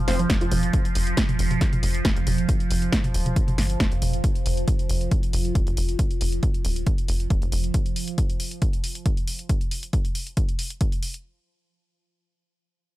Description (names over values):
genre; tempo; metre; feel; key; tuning
driving peak-time techno; 137 BPM; 4/4; straight; unclear; A4 = 438 Hz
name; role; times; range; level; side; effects
overtone-sweeping drone; drone; 0.0-7.8 s; F3; -30 LUFS; right 3 dB; chorus, built-in reverb, sidechain pumping
analog pluck; riff; 0.1-0.6 s; F3 to F4; -31 LUFS; right 1 dB; chorus, cassette tape, sidechain pumping, analog delay
tight sequencer bass; bass; 0.1-7.7 s; Eb1 to G1; -25 LUFS; equal; sidechain pumping
techno drum kit; drums; 0.1-11.2 s; hi-hat, snare drum, toms; -28 LUFS; equal; overdrive
electronic kick drum; drums; 0.3-10.9 s; none; -23 LUFS; equal; none
room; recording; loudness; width
little or no reverb; dry, gritty hardware recording; -21 LUFS; side -16 dB against mid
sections
0.0-11.2 A section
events
none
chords
0.0 F5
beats
0.30 | 0.73 1.17 1.61 2.05 | 2.49 2.92 3.36 3.80 | 4.24 4.68 5.11 5.55 | 5.99 6.43 6.87 7.30 | 7.74 8.18 8.62 9.06 | 9.49 9.93 10.37 10.81